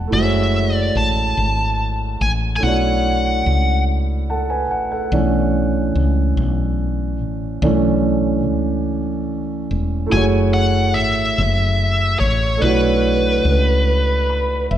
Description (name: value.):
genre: slow six-eight R&B.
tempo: 48 BPM (dotted quarters).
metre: 6/8.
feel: straight.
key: unclear.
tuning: A4 = 440 Hz.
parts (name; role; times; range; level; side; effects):
dark concert grand piano; accompaniment; 0.0-14.8 s; E3 to B5; -20 LUFS; right 3 dB; none.
woody fretless electric bass; bass; 0.0-14.8 s; E1 to C#2; -19 LUFS; left 1 dB; none.
bluesy overdriven lead guitar; melody; 0.1-3.8, 10.1-14.7 s; B4 to A5; -20 LUFS; left 1 dB; distortion.
room: moderate scoring stage reverb, RT60 1.9 s.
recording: recorded in a church or concert hall.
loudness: -16 LUFS.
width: side -10 dB against mid.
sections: 0.0-5.1 A section; 5.1-10.1 B section; 10.1-14.8 C section.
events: grand piano fill 3.9-5.1, 13.9-14.8; grand piano solo 5.1-10.1.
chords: 0.1 F#m9; 2.6 Bm11; 10.1 F#m9; 12.6 Bm11.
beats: | 0.12 1.36 | 2.62 3.87 | 5.12 6.37 | 7.62 8.87 | 10.12 11.37 | 12.62 13.87.